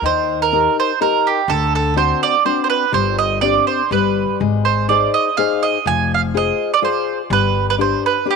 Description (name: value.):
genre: italian folk, Italian serenade.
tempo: 124 BPM.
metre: 3/4.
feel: straight.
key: unclear.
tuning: A4 = 440 Hz.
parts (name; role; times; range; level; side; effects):
mandolin; melody; 0.0-8.4 s; G4 to Ab5; -16 LUFS; right 9 dB; none.
nylon-string guitar; accompaniment; 0.0-8.4 s; D3 to C5; -20 LUFS; left 14 dB; none.
upright bass; bass; 0.0-7.9 s; F1 to Eb2; -22 LUFS; left 1 dB; none.
room: light reverb, small room ambience.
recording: 1960s-style stereo with parts hard left and right.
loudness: -14 LUFS.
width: side -5 dB against mid.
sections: 0.0-8.4 A section.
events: none.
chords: 0.0 Eb; 1.5 D7; 2.9 Gsus4; 3.9 G; 4.4 Ab; 5.9 Fm; 7.3 G.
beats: | 0.03 0.52 1.00 | 1.49 1.97 2.45 | 2.94 3.43 3.92 | 4.41 4.90 5.39 | 5.87 6.36 6.83 | 7.31 7.79 8.27.